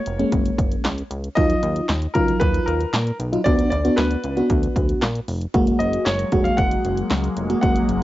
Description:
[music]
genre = synth-pop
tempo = 115 BPM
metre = 4/4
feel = straight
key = F# major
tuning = A4 = 440 Hz
[part]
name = clear grand piano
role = melody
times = 0.0-8.0 s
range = A#4 to F#5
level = -25 LUFS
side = left 1 dB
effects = cassette tape, analog delay, plate reverb
[part]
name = chorused synth bass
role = bass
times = 0.1-8.0 s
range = E#1 to A#2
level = -25 LUFS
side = equal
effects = none
[part]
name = punchy analog drum machine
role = drums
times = 0.1-8.0 s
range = handclaps, hi-hat, kick drum, snare drum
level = -22 LUFS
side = equal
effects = cassette tape
[part]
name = mellow FM electric piano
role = accompaniment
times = 0.2-7.9 s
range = F#3 to F#4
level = -22 LUFS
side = equal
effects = chorus, cassette tape, plate reverb
[part]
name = phased analog pad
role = sustained chords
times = 5.5-8.0 s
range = F#3 to A#3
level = -26 LUFS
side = left 2 dB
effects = phaser, chorus, cassette tape, plate reverb
[sound]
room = moderate small room ambience, RT60 0.5 s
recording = home recording on cassette, nothing above 7.7 kHz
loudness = -18 LUFS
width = side -15 dB against mid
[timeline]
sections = 0.0-8.0 A section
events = none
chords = 0.0 F#add9; 1.4 D#madd9; 3.5 Bm; 5.5 F#add9

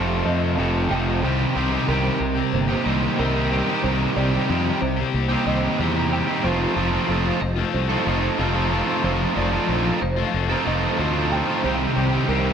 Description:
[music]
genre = post-rock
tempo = 92 BPM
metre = 4/4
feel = straight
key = C dorian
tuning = A4 = 440 Hz
[part]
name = hollow soft pad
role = sustained chords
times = 0.0-12.5 s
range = C5 to Bb5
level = -34 LUFS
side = right 2 dB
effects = ensemble chorus
[part]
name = felt-muted upright piano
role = arpeggios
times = 0.0-12.5 s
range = Bb4 to G5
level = -32 LUFS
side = right 5 dB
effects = digital delay, slapback echo
[part]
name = twelve-string electric guitar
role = arpeggios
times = 0.0-12.5 s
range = C3 to C5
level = -29 LUFS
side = left 2 dB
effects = harmonic tremolo, digital delay, slapback echo
[part]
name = crunchy overdriven guitar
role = riff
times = 0.0-12.5 s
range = F2 to A4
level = -24 LUFS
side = right 9 dB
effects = slapback echo
[part]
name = distorted electric guitar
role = riff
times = 0.0-12.5 s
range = F2 to G4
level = -25 LUFS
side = left 9 dB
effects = distortion
[part]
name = fuzz fingered electric bass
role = bass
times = 0.0-12.5 s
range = F1 to F2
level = -25 LUFS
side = equal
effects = overdrive
[sound]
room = moderate lush hall reverb, RT60 2.1 s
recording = big arena sound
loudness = -19 LUFS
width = side -7 dB against mid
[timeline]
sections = 0.0-1.2 A section; 1.2-12.5 B section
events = build-up 0.0-1.2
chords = 0.0 F7; 1.2 Cm7; 6.4 F7sus4; 11.6 Cm7

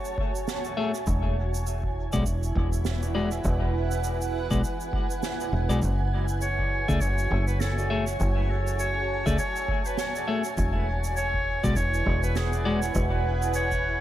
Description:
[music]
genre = ambient dub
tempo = 101 BPM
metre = 4/4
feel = swing 58% on 16ths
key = unclear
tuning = A4 = 443 Hz
[part]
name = granular cloud pad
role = sustained chords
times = 0.0-14.0 s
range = E4 to A5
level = -32 LUFS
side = right 2 dB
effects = built-in reverb, vintage 12-bit sampler grit
[part]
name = shaker and snare drum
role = drums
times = 0.0-13.8 s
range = none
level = -37 LUFS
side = right 3 dB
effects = dub echo
[part]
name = electronic kick drum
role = drums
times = 0.2-13.8 s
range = none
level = -31 LUFS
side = equal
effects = overdrive
[part]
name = clean electric guitar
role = stabs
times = 0.8-12.8 s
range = G#3 to E5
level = -32 LUFS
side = left 4 dB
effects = vintage 12-bit sampler grit, dub echo
[part]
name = fingered electric bass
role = bass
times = 1.1-14.0 s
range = E1 to C#2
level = -26 LUFS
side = equal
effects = none
[part]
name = clear clarinet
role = melody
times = 6.4-14.0 s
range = G#4 to D5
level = -30 LUFS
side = equal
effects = dub echo
[sound]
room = light reverb, studio reverb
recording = none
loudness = -24 LUFS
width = side -13 dB against mid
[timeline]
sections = 0.0-14.0 A section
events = none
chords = 0.0 F#m9; 1.1 Eadd9; 5.8 F#m9; 10.6 Eadd9

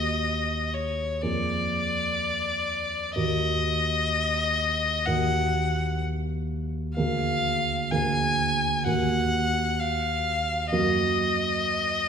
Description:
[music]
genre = classical, romantic duo for violin and grand piano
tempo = 61-67 BPM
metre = 4/4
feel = rubato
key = Eb minor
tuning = A4 = 440 Hz
[part]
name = rich violin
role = melody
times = 0.0-12.1 s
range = Db5 to Ab5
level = -26 LUFS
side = left 2 dB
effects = none
[part]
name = dark concert grand piano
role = accompaniment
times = 0.0-12.1 s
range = D2 to Bb4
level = -27 LUFS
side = right 2 dB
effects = none
[sound]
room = wet recital hall reverb, RT60 1.6 s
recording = recorded in a church or concert hall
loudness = -23 LUFS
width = side -7 dB against mid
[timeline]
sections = 0.0-12.1 A section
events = none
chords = 0.0 Ebm; 1.2 Bb7/F; 3.2 Ebm; 7.0 Bb7/D; 8.9 Ebm; 10.7 Ebm/Gb

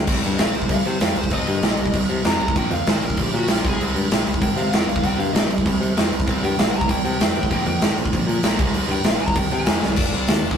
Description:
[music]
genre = punk rock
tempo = 194 BPM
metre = 4/4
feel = straight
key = C minor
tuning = A4 = 435 Hz
[part]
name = modern bright picked electric bass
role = bass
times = 0.0-10.6 s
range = F1 to C3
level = -25 LUFS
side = left 1 dB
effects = none
[part]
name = biting overdriven guitar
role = riff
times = 0.1-10.6 s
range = F2 to F4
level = -29 LUFS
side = left 4 dB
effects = none
[part]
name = tight distorted guitar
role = riff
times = 0.1-10.0 s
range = Ab2 to C4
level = -29 LUFS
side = right 4 dB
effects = distortion
[part]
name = big rock drum kit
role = drums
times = 0.1-10.6 s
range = crash cymbal, hi-hat, kick drum, snare drum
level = -20 LUFS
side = right 1 dB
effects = none
[part]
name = bluesy overdriven lead guitar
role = melody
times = 0.4-10.6 s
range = D4 to Bb5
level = -26 LUFS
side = left 1 dB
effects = distortion
[sound]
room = light reverb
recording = rough rehearsal-room recording, tube saturation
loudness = -18 LUFS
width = side -7 dB against mid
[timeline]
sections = 0.1-10.0 A section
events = lead electric guitar solo 0.1-10.0; drum fill 9.8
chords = 0.1 Cm; 2.6 Bb; 3.7 Ab; 5.0 C5; 7.5 Bb5; 8.6 Ab; 10.0 F

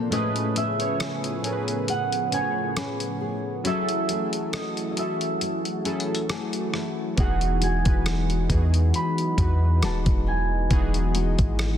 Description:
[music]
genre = contemporary R&B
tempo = 68 BPM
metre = 4/4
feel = swing 54% on 16ths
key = E major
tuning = A4 = 440 Hz
[part]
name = warm analog keys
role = accompaniment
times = 0.0-11.8 s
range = A2 to C#5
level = -30 LUFS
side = right 2 dB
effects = chorus
[part]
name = lush unison pad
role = sustained chords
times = 0.0-11.8 s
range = B#2 to G#4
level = -33 LUFS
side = equal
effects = chorus, sidechain pumping
[part]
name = nylon-string guitar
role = arpeggios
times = 0.0-11.8 s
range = E3 to B4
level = -32 LUFS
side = left 6 dB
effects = tape echo
[part]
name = concert harp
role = melody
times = 0.1-11.8 s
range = D#5 to B5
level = -29 LUFS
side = right 3 dB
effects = tape echo
[part]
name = dusty soul sampler-style drum kit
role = drums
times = 0.1-11.8 s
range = hi-hat, kick drum, rim click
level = -26 LUFS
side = equal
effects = soft clipping on snare
[part]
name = soft 808-style bass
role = bass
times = 7.2-11.8 s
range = D#1 to E2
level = -23 LUFS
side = equal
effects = none
[sound]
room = light reverb, digital ambience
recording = dense, heavily limited modern master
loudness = -22 LUFS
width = side -10 dB against mid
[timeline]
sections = 0.0-11.8 A section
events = break 0.0-7.2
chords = 0.1 Amaj9; 3.6 F#m9; 7.2 Emaj9

